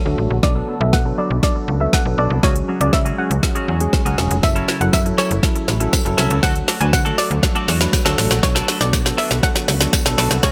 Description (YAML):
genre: dance-pop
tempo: 120 BPM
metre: 4/4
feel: straight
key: unclear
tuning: A4 = 439 Hz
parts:
  - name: hollow square pluck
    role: melody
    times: 0.0-10.5 s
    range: C#5 to G#5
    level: -26 LUFS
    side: equal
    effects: chorus, low-pass filter, delay
  - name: soft supersaw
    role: sustained chords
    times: 0.0-10.5 s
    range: C#3 to F#4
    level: -32 LUFS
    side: equal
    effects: none
  - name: bell-like tine electric piano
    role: accompaniment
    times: 0.1-10.5 s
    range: F#3 to B4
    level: -26 LUFS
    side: equal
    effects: analog chorus, sidechain pumping, low-pass filter
  - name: twelve-string electric guitar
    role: riff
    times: 0.1-10.5 s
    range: F#3 to A4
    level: -28 LUFS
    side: equal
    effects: lush chorus, low-pass filter
  - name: slap-like FM bass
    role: bass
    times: 0.1-10.5 s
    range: E1 to D3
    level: -22 LUFS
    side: equal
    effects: sidechain pumping
  - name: deep house drum kit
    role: drums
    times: 0.4-10.5 s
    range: hi-hat, kick drum, shaker, snare drum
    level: -20 LUFS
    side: equal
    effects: none
  - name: tambourine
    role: percussion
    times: 4.4-10.5 s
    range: none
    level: -33 LUFS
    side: equal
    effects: none
room: light reverb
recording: bright 1980s-style digital production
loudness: -17 LUFS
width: mono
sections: 0.0-10.5 A section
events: build-up 0.0-10.5; drum fill 0.0-10.5; filter sweep 0.0-10.5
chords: 0.4 Bm7; 2.4 C#sus4; 4.4 F#m7; 6.4 D; 8.4 Bm7